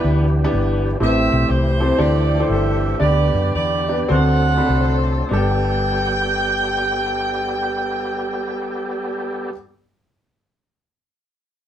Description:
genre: gospel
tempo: 93-124 BPM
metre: 4/4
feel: swing 65% on 8ths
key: G major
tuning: A4 = 440 Hz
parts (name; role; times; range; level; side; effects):
- mellow saxophone section; melody; 0.0-9.5 s; D4 to G5; -22 LUFS; right 2 dB; none
- warm concert grand piano; accompaniment; 0.0-9.5 s; G2 to B5; -23 LUFS; equal; none
- overdriven tonewheel organ; sustained chords; 0.0-9.5 s; E3 to A4; -26 LUFS; equal; slow rotary speaker, chorus vibrato
- hollow-body short-scale fingered electric bass; bass; 0.0-9.5 s; G1 to F#2; -20 LUFS; equal; none
room: wet small room reverb, RT60 0.5 s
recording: band playing live in one room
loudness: -16 LUFS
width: side -10 dB against mid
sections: 0.0-5.3 A section; 5.3-10.5 B section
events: slowing down 1.0-5.3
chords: 0.0 Em7; 1.0 Am7; 2.0 D9sus4; 3.0 G/D; 4.1 D7; 5.3 Gadd9

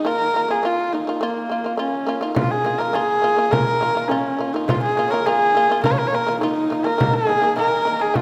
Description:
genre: mongolian traditional, Mongolian folk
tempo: 104 BPM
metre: 4/4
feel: straight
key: Bb yu mode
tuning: A4 = 439 Hz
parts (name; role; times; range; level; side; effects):
- rich horsehead fiddle; melody; 0.0-8.2 s; Bb3 to Db5; -21 LUFS; equal; none
- shamisen; arpeggios; 0.0-8.2 s; Eb3 to F4; -27 LUFS; equal; none
- frame drum; percussion; 2.4-8.2 s; none; -27 LUFS; equal; none
room: wet concert hall reverb, RT60 2.2 s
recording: none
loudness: -20 LUFS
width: mono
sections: 0.0-2.4 A section; 2.4-8.2 B section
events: none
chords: 0.1 Bb5; 7.0 Eb5

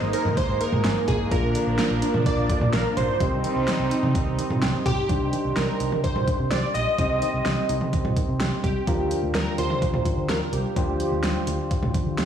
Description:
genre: synth-pop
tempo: 127 BPM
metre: 4/4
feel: straight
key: C minor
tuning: A4 = 440 Hz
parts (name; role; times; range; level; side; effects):
- soft electric-piano-like synth keys; accompaniment; 0.0-12.3 s; Bb3 to C5; -30 LUFS; left 2 dB; chorus
- brassy analog pad; sustained chords; 0.0-5.1 s; F3 to Eb4; -30 LUFS; right 1 dB; chorus
- analog pluck; arpeggios; 0.0-12.3 s; D3 to Ab5; -33 LUFS; right 4 dB; chorus, analog delay
- vintage muted fingered electric bass; bass; 0.0-12.3 s; Ab1 to D3; -28 LUFS; equal; none
- funky polysynth comp; melody; 0.1-12.1 s; G4 to Eb5; -27 LUFS; right 2 dB; chorus, analog delay
- pop drum kit; drums; 0.1-12.3 s; hi-hat, kick drum, snare drum, toms; -26 LUFS; equal; overdrive
room: moderate concert hall reverb, RT60 1.9 s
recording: blown-out, overdriven recording, overdrive, studio reverb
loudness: -21 LUFS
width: side -8 dB against mid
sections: 0.0-5.1 A section; 5.1-12.3 B section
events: none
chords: 0.0 Absus2; 1.3 Bb; 3.2 Cm; 5.1 Cmadd9; 8.9 Gm7

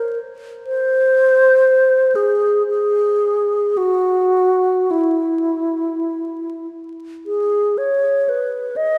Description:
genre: classical, free, expressive piece for unaccompanied alto flute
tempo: 43-64 BPM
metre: 3/4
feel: rubato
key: unclear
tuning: A4 = 439 Hz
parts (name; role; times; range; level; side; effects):
- bright wooden-headed alto flute; solo; 0.0-9.0 s; E4 to D#5; -18 LUFS; equal; none
room: wet church reverb, RT60 3.1 s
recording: heard from further back in the room, vinyl crackle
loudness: -17 LUFS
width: mono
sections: 0.0-7.3 A section; 7.3-9.0 B section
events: none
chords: none

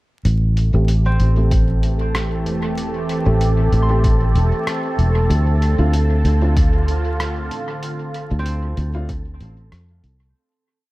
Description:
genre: ambient dub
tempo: 95 BPM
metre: 4/4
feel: swing 55% on 16ths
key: A minor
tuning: A4 = 440 Hz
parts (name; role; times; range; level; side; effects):
- warm analog pad; sustained chords; 0.2-10.4 s; D3 to A4; -25 LUFS; equal; chorus
- fingered electric bass; bass; 0.2-10.3 s; E1 to F2; -17 LUFS; equal; tube saturation
- lo-fi sampler-style drum kit; drums; 0.3-10.2 s; hi-hat, rim click; -31 LUFS; equal; small room ambience, dub echo
- wind-like tuned noise texture; texture; 1.0-10.4 s; A4; -30 LUFS; right 3 dB; built-in reverb
- dark upright piano; stabs; 0.7-9.1 s; A3 to G4; -29 LUFS; equal; low-pass filter, dub echo
- concert harp; arpeggios; 1.1-10.9 s; C4 to C6; -32 LUFS; right 2 dB; analog delay
- electronic kick drum; drums; 1.5-9.2 s; none; -18 LUFS; equal; small room ambience
room: digital ambience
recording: echo-heavy mix, vinyl crackle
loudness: -16 LUFS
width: side -19 dB against mid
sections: 0.3-10.4 groove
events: filter sweep on upright piano 0.3-10.4; fade-out 7.0-10.4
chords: 0.3 Am7; 5.3 Dm7

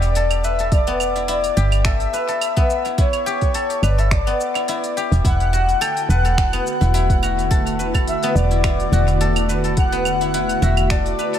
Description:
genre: organic downtempo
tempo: 106 BPM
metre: 4/4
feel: swing 54% on 16ths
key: E minor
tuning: A4 = 444 Hz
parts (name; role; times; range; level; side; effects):
- breathy flute-like synth lead; melody; 0.0-11.4 s; C#5 to G5; -23 LUFS; left 1 dB; tremolo, analog chorus, dub echo, shimmer reverb
- guzheng; arpeggios; 0.0-11.4 s; B3 to B4; -24 LUFS; left 2 dB; dub echo, shimmer reverb
- woody FM bass; bass; 0.0-11.1 s; E1 to G1; -19 LUFS; equal; sidechain pumping
- organic electronic drum kit; drums; 0.0-11.4 s; claves, finger snaps, hi-hat, shaker; -27 LUFS; right 3 dB; overdrive, small room ambience, dub echo
- electronic kick drum; drums; 0.7-11.0 s; none; -19 LUFS; equal; overdrive, small room ambience
- ethereal airy pad; sustained chords; 5.7-11.4 s; D3 to F#4; -25 LUFS; left 1 dB; ensemble chorus, built-in reverb, sidechain pumping, shimmer reverb
room: light reverb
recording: echo-heavy mix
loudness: -16 LUFS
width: side -10 dB against mid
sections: 0.0-11.4 A section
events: none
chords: 0.0 Em7; 5.2 D/E

